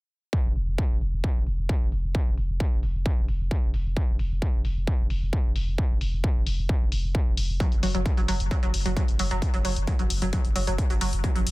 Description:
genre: driving peak-time techno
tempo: 132 BPM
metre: 4/4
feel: straight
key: unclear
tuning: A4 = 440 Hz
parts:
  - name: electronic kick drum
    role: drums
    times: 0.3-11.3 s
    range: none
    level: -24 LUFS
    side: equal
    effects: distortion, overdrive
  - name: saturated sub bass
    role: bass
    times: 0.4-11.5 s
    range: F1 to Gb1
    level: -27 LUFS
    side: equal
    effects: overdrive, sidechain pumping, low-pass filter
  - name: electronic hi-hat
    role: drums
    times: 0.6-11.5 s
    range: none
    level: -34 LUFS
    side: left 4 dB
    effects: overdrive, low-pass filter on hats
  - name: analog pluck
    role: riff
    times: 7.6-11.4 s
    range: Gb3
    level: -30 LUFS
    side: right 2 dB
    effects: chorus, tube saturation, sidechain pumping, ping-pong delay
room: digital ambience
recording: dense, heavily limited modern master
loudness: -23 LUFS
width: side -20 dB against mid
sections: 0.3-11.5 A section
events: filter sweep on drum 0.3-11.5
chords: none

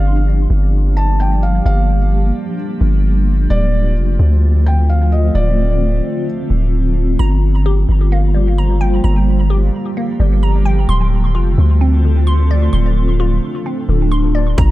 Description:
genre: hip hop, atmospheric cloud-rap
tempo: 130 BPM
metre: 4/4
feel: half-time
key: G minor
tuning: A4 = 442 Hz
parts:
  - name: felt-muted upright piano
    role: melody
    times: 0.0-6.2 s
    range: D5 to A5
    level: -25 LUFS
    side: equal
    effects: dub echo
  - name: granular cloud pad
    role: sustained chords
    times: 0.0-14.7 s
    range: D3 to G4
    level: -20 LUFS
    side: equal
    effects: built-in reverb, sidechain pumping
  - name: long sustained 808-style bass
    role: bass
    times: 0.0-14.7 s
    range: D1 to D2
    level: -13 LUFS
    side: equal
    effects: none
  - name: glassy wavetable pluck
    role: arpeggios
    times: 7.2-14.7 s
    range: D3 to C6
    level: -24 LUFS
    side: left 1 dB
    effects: chorus, dub echo
  - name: trap drum kit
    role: drums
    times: 14.6-14.7 s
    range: hi-hat, kick drum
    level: -12 LUFS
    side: equal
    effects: none
room: little or no reverb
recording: echo-heavy mix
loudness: -12 LUFS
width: side -16 dB against mid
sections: 0.0-7.2 A section; 7.2-14.7 B section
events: none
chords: 0.0 Gm7; 3.5 Dm7; 7.2 Gm7; 10.9 Dm7

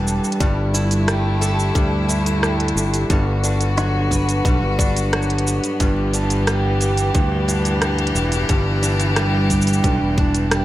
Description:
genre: folktronica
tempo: 89 BPM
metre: 4/4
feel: straight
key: G major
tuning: A4 = 440 Hz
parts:
  - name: clear string quartet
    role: sustained chords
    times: 0.0-10.6 s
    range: D3 to A4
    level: -25 LUFS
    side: left 3 dB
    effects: none
  - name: picked twelve-string acoustic guitar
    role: arpeggios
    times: 0.0-10.6 s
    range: G2 to B4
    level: -21 LUFS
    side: right 1 dB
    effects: tape echo
  - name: fingered electric bass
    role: bass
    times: 0.0-10.6 s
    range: E1 to D2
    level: -20 LUFS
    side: equal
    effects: tube saturation
  - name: organic electronic drum kit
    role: drums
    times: 0.1-10.6 s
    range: cabasa, hi-hat, rim click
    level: -25 LUFS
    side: right 1 dB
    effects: studio reverb
  - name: electronic kick drum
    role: drums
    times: 0.4-10.3 s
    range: none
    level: -19 LUFS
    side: equal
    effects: studio reverb
room: light reverb, digital ambience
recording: none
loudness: -16 LUFS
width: side -15 dB against mid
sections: 0.0-10.6 A section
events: none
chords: 0.4 Dsus2/G; 3.1 Bm/G; 5.8 G6

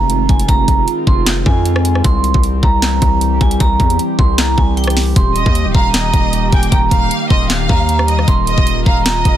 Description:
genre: hip hop, trap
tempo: 154 BPM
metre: 4/4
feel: half-time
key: unclear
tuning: A4 = 440 Hz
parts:
  - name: vibraphone with hard mallets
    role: melody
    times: 0.0-9.4 s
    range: G5 to C6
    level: -19 LUFS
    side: right 4 dB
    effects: low-pass filter, tape echo
  - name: warbly tape-like pad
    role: sustained chords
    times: 0.0-9.4 s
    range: Eb3 to G4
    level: -20 LUFS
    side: equal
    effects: chorus, built-in reverb, phaser
  - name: distorted 808-style bass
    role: bass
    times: 0.0-9.4 s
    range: Db1 to F2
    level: -16 LUFS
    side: equal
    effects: distortion
  - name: trap drum kit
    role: drums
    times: 0.1-9.3 s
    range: handclaps, hi-hat, kick drum, rim click, snare drum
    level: -14 LUFS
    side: equal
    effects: none
  - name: warm studio violin section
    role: second line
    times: 5.4-9.4 s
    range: Eb5 to G5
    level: -21 LUFS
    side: equal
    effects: tape echo
room: little or no reverb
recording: dense, heavily limited modern master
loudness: -11 LUFS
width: side -11 dB against mid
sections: 0.0-9.4 A section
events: none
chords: 0.0 Fm7; 2.0 C; 5.2 Eb

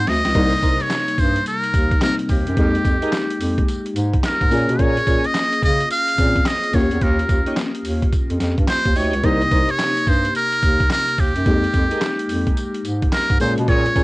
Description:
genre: R&B, new jack swing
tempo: 108 BPM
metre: 4/4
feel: swing 63% on 16ths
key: unclear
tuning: A4 = 440 Hz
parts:
  - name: trumpet with metal mute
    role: melody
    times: 0.0-14.0 s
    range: G4 to F5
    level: -21 LUFS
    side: equal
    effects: plate reverb
  - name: FM electric piano with tremolo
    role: accompaniment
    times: 0.0-14.0 s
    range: C3 to Ab4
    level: -24 LUFS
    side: left 2 dB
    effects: plate reverb
  - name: dark bass clarinet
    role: bass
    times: 0.0-14.0 s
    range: C2 to Db3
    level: -22 LUFS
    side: equal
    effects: none
  - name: boom bap sampler-style drum kit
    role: drums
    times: 0.1-14.0 s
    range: crash cymbal, handclaps, hi-hat, kick drum, snare drum, tambourine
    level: -20 LUFS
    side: equal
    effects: cassette tape
  - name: tonewheel organ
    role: stabs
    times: 0.3-14.0 s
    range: Db4 to Db5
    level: -26 LUFS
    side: right 1 dB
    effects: chorus vibrato, slow rotary speaker, plate reverb
room: light reverb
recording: home recording on cassette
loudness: -16 LUFS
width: side -21 dB against mid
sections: 0.3-14.0 A section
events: drum fill 0.0-0.3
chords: 0.3 Cm7; 2.6 Fm11; 4.5 Bbm7; 6.7 Eb7; 9.2 Cm7; 11.5 Fm11; 13.4 Bbm7

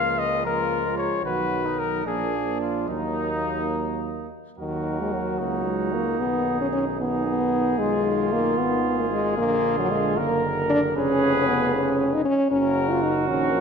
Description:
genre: classical, brass quintet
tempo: 76 BPM (dotted quarters)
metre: 6/8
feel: rubato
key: Eb minor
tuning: A4 = 440 Hz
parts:
  - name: mellow trumpet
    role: melody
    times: 0.0-13.6 s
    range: Eb4 to F5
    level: -29 LUFS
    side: left 6 dB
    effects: none
  - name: warm flugelhorn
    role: second line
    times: 0.0-13.6 s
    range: D4 to Bb4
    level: -28 LUFS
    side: right 7 dB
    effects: none
  - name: warm French horn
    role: accompaniment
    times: 0.0-13.6 s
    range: Eb3 to E#4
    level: -24 LUFS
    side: left 2 dB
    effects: none
  - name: warm trombone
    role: accompaniment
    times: 0.0-13.6 s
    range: C#3 to Bb3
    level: -32 LUFS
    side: right 5 dB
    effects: none
  - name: brilliant bass trombone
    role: bass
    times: 0.0-13.6 s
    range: E#1 to Eb2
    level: -31 LUFS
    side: right 2 dB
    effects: none
room: wet scoring stage reverb, RT60 1.5 s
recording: none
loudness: -21 LUFS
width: side -6 dB against mid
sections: 0.0-4.6 A section; 4.6-13.6 B section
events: none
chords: 0.0 Bbm/Db; 1.2 B; 2.1 Bb7; 2.9 Ebm; 6.2 Abm/Cb; 7.8 Fm7b5/Cb; 9.4 Bb7; 11.0 C#/E#; 12.5 F#

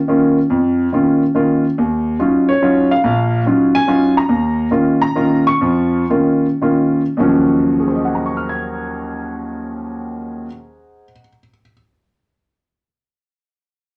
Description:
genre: jazz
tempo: 100-142 BPM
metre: 3/4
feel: swing 65% on 8ths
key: Eb dorian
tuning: A4 = 440 Hz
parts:
  - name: clear grand piano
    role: solo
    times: 0.1-11.7 s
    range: Bb1 to Ab6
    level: -16 LUFS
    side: equal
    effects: none
room: wet small room ambience, RT60 0.5 s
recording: none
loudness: -15 LUFS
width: mono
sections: 0.0-1.8 A section; 1.8-7.2 B section; 7.2-10.8 C section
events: slowing down 4.3-7.2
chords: 0.0 Bbm; 1.8 Ebm9; 4.3 Bbm/Eb; 7.2 Ebm9

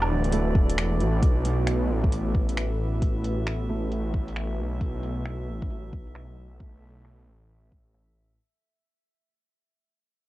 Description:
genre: future garage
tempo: 134 BPM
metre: 4/4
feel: swing 63% on 16ths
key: unclear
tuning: A4 = 439 Hz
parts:
  - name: felt-muted upright piano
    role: accompaniment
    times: 0.0-8.4 s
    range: F#3 to B3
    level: -34 LUFS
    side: right 3 dB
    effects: sidechain pumping, low-pass filter, analog delay
  - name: dark analog pad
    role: sustained chords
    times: 0.0-8.4 s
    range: E3 to B4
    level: -33 LUFS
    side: equal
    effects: chorus, sidechain pumping
  - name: swelling detuned saw bass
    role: bass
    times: 0.0-8.4 s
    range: D1 to B1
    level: -27 LUFS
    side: equal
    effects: sidechain pumping
  - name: deep house drum kit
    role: drums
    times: 0.0-8.1 s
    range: finger snaps, hi-hat, woodblock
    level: -31 LUFS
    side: right 1 dB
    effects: low-pass filter on hats, vintage 12-bit sampler grit, low-pass filter on snare, low-pass filter on perc
  - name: drifting glass-harmonics texture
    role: texture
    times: 0.0-8.4 s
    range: D5 to E5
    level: -41 LUFS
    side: right 2 dB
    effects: chorus, built-in reverb
  - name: electronic kick drum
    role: drums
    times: 0.6-7.8 s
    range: none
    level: -24 LUFS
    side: equal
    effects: vintage 12-bit sampler grit
room: little or no reverb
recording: dark, warm production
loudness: -24 LUFS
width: side -16 dB against mid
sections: 0.0-1.2 A section; 1.2-8.4 B section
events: fade-out 1.2-8.4; filter sweep on felt piano 1.2-8.4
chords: 0.0 Em9; 1.2 B7sus4

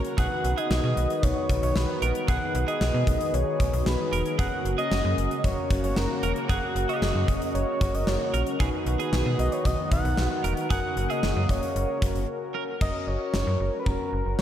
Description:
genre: synth-pop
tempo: 114 BPM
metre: 4/4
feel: straight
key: F# major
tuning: A4 = 441 Hz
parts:
  - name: analog synth brass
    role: accompaniment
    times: 0.0-14.4 s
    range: C#4 to B4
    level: -33 LUFS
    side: left 2 dB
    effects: chorus
  - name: sweeping resonant pad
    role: sustained chords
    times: 0.0-12.8 s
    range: C#3 to G#4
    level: -33 LUFS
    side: right 1 dB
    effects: chorus
  - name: gated 80s drum kit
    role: drums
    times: 0.0-14.4 s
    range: crash cymbal, hi-hat, kick drum, snare drum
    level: -29 LUFS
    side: equal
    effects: none
  - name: expressive synth lead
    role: melody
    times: 0.2-14.4 s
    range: A#4 to F#5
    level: -30 LUFS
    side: equal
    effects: chorus, tape echo
  - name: twelve-string electric guitar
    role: second line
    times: 0.2-12.6 s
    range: G#4 to A#4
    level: -35 LUFS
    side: right 6 dB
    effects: wide subtle chorus, tape echo
  - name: slap-like FM bass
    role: bass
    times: 0.2-14.4 s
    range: E1 to B2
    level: -27 LUFS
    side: equal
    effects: none
room: wet lush hall reverb, RT60 2.5 s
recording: dreamy mix soaked in reverb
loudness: -23 LUFS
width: side -10 dB against mid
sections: 0.0-12.8 A section; 12.8-14.4 B section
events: break 12.3-12.8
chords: 0.2 B; 4.4 F#; 8.6 B; 10.7 F#

